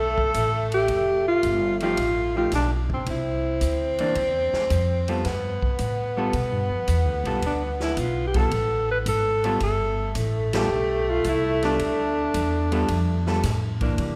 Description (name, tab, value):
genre	jazz, small-group swing and bop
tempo	110 BPM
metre	4/4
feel	swing 69% on 8ths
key	unclear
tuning	A4 = 441 Hz
part	breathy alto saxophone	melody	0.0-4.1, 7.5-13.8 s	C4 to B4	-27 LUFS	equal	none
part	clear tenor saxophone	second line	0.0-14.2 s	G3 to C4	-30 LUFS	equal	none
part	upright bass	bass	0.0-14.2 s	F1 to C3	-29 LUFS	equal	none
part	swinging big-band drum kit	drums	0.2-14.2 s	hi-hat, kick drum, ride cymbal, snare drum	-35 LUFS	equal	none
part	vintage hollow-body jazz guitar	accompaniment	1.8-14.2 s	E3 to A4	-33 LUFS	equal	none
room	moderate concert hall reverb, RT60 2.3 s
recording	recorded in a church or concert hall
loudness	-24 LUFS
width	mono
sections	0.0-14.2 A section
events	band accent 10.4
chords	0.0 Fadd9; 3.1 Cadd9; 5.2 G9